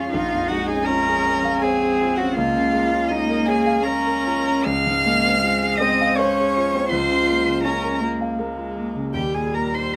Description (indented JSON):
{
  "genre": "classical, slow romantic movement for piano quartet",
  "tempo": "80 BPM",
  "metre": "3/4",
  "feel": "rubato",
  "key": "unclear",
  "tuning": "A4 = 437 Hz",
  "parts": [
    { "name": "warm violin", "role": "melody", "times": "0.0-10.0 s", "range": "Eb5 to F6", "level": "-28 LUFS", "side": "equal", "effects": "none" },
    { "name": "rich cello", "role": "second line", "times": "0.0-10.0 s", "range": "Eb4 to F5", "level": "-24 LUFS", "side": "equal", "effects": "none" },
    { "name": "warm concert grand piano", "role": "accompaniment", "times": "0.0-10.0 s", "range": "Bb1 to F5", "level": "-27 LUFS", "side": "equal", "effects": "none" },
    { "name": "warm viola", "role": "accompaniment", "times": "0.0-10.0 s", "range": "G3 to F4", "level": "-27 LUFS", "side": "equal", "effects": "none" }
  ],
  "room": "light reverb",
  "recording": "none",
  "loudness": "-20 LUFS",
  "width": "mono",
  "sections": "0.0-10.0 A section",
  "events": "none",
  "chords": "0.1 Bbm7; 2.4 Bbm/Db; 4.7 Dbmaj7; 6.9 Bbm/Db; 9.1 Eb",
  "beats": "| 0.10 0.87 1.61 | 2.37 3.10 3.85 | 4.66 5.42 6.17 | 6.90 7.64 8.38 | 9.14 9.93"
}